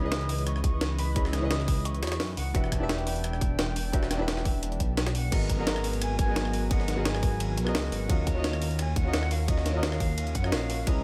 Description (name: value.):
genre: liquid drum and bass.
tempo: 173 BPM.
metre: 4/4.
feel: straight.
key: G# minor.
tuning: A4 = 435 Hz.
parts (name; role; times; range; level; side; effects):
mellow concert flute; melody; 0.0-11.0 s; D#5 to E6; -41 LUFS; equal; tape echo.
warm grand piano; accompaniment; 0.0-11.0 s; B3 to E5; -36 LUFS; equal; none.
lush unison pad; sustained chords; 0.0-11.0 s; E3 to D#6; -42 LUFS; equal; chorus, sidechain pumping.
dark detuned saw bass; bass; 0.0-11.0 s; E1 to F#2; -32 LUFS; equal; tube saturation.
jungle sampler-style drum kit; drums; 0.1-10.9 s; crash cymbal, hi-hat, ride cymbal, rim click, snare drum; -36 LUFS; equal; none.
jungle sampler-style drum kit; drums; 0.1-11.0 s; hi-hat, snare drum; -40 LUFS; equal; high-pass filter on snare, high-pass filter on hats.
electronic kick drum; drums; 0.6-10.9 s; none; -30 LUFS; equal; none.
room: little or no reverb.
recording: none.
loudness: -28 LUFS.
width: mono.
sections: 0.0-5.3 A section; 5.3-11.0 A section.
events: drop 0.0-5.3, 5.3-11.0.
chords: 0.0 C#m9; 2.5 Em9; 5.3 G#m9; 8.1 D#m9.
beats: 0.12 0.47 0.81 | 1.16 1.50 1.85 2.20 | 2.55 2.89 3.24 3.59 | 3.93 4.28 4.63 4.97 | 5.32 5.67 6.01 6.36 | 6.71 7.05 7.40 7.75 | 8.10 8.44 8.79 9.14 | 9.48 9.83 10.18 10.52 | 10.87.